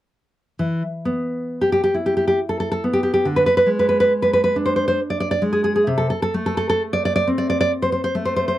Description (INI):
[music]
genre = romantic piece for solo classical guitar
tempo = 68 BPM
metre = 3/4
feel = rubato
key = unclear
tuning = A4 = 441 Hz
[part]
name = nylon-string guitar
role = solo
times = 0.6-8.6 s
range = C3 to D5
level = -17 LUFS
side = equal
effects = none
[sound]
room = light reverb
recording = dry, close 1970s-style studio recording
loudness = -17 LUFS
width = side -14 dB against mid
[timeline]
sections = 0.6-8.6 A section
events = none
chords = 0.6 E5; 3.3 G#dim/D; 5.9 Am/C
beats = | 0.60 1.51 2.39 | 3.26 4.13 5.00 | 5.88 6.83 7.71 | 8.58